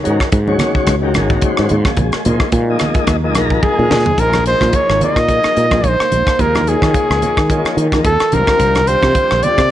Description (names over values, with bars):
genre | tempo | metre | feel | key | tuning
electric jazz fusion | 109 BPM | 4/4 | swing 55% on 16ths | Bb minor, Bb dorian from 4.2 s | A4 = 442 Hz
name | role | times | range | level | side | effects
tonewheel organ | accompaniment | 0.0-9.6 s | D3 to Bb5 | -20 LUFS | left 2 dB | slow rotary speaker
granular cloud pad | sustained chords | 0.0-9.7 s | C3 to Gb4 | -25 LUFS | equal | none
fretless electric bass | bass | 0.1-9.7 s | Ab1 to Eb3 | -17 LUFS | equal | none
tight funk drum kit | drums | 0.1-9.7 s | hi-hat, kick drum, rim click, snare drum, toms | -18 LUFS | equal | none
congas | percussion | 0.5-9.6 s | none | -23 LUFS | right 2 dB | none
breathy trumpet | melody | 3.6-9.7 s | Ab4 to Eb5 | -14 LUFS | equal | none
room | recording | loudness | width
light reverb, small room ambience | nothing above 10.9 kHz | -12 LUFS | side -12 dB against mid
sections
0.0-4.2 A section; 4.2-9.7 B section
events
tonewheel organ fill 3.1-4.2; drum fill 3.6-4.2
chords
0.0 Ab9sus4; 2.0 Bb9sus4; 6.4 Eb9sus4; 8.3 C9sus4